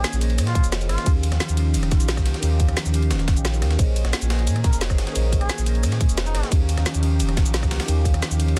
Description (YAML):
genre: liquid drum and bass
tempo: 176 BPM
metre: 4/4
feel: straight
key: unclear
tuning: A4 = 440 Hz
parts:
  - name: trumpet with cup mute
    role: melody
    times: 0.0-1.1, 4.6-6.5 s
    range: Eb4 to Bb4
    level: -38 LUFS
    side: equal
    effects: tape echo
  - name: mellow tine electric piano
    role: accompaniment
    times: 0.0-8.6 s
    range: Eb3 to G5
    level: -31 LUFS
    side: equal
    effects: phaser, tape echo
  - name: lush unison pad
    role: sustained chords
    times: 0.0-8.6 s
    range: Eb3 to Ab4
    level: -37 LUFS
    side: equal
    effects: chorus, phaser, sidechain pumping
  - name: warm sub bass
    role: bass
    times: 0.0-8.6 s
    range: Eb1 to Bb2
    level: -24 LUFS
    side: equal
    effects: none
  - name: breakbeat sampler-style drum kit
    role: drums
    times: 0.0-8.6 s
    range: ride cymbal, snare drum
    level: -35 LUFS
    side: equal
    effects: high-pass filter on cymbals, high-pass filter on snare
  - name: drum and bass drum kit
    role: drums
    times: 0.0-8.6 s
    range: cabasa, hi-hat, rim click, snare drum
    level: -31 LUFS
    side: equal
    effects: none
  - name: electronic kick drum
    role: drums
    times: 0.6-8.1 s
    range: none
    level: -22 LUFS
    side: equal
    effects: none
room: little or no reverb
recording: dense, heavily limited modern master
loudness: -21 LUFS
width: mono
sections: 0.0-8.6 A section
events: none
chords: 0.0 Bbm11; 1.1 Eb9; 3.8 Bbm11; 6.5 Eb9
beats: 0.04 0.38 0.72 | 1.06 1.41 1.75 2.09 | 2.43 2.77 3.11 3.45 | 3.79 4.13 4.47 4.81 | 5.16 5.50 5.84 6.18 | 6.52 6.86 7.20 7.54 | 7.88 8.22 8.56